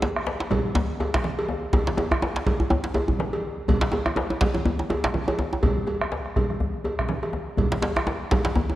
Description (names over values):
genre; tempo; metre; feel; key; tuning
west african traditional, West African drum ensemble; 123 BPM; 4/4; swing 57% on 16ths; none; none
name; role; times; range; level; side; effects
cowbell; percussion; 0.0-8.4 s; none; -30 LUFS; equal; none
djembe; percussion; 0.0-8.7 s; none; -28 LUFS; left 2 dB; none
djembe; percussion; 0.0-8.8 s; none; -27 LUFS; right 1 dB; none
bombo; percussion; 0.2-8.4 s; none; -28 LUFS; right 1 dB; none
congas; percussion; 0.5-8.6 s; none; -32 LUFS; right 4 dB; none
room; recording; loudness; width
wet concert hall reverb, RT60 2.0 s; worn, warbling old tape, cassette tape, warbly pitch drift; -22 LUFS; side -14 dB against mid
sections
0.0-8.8 A section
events
none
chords
none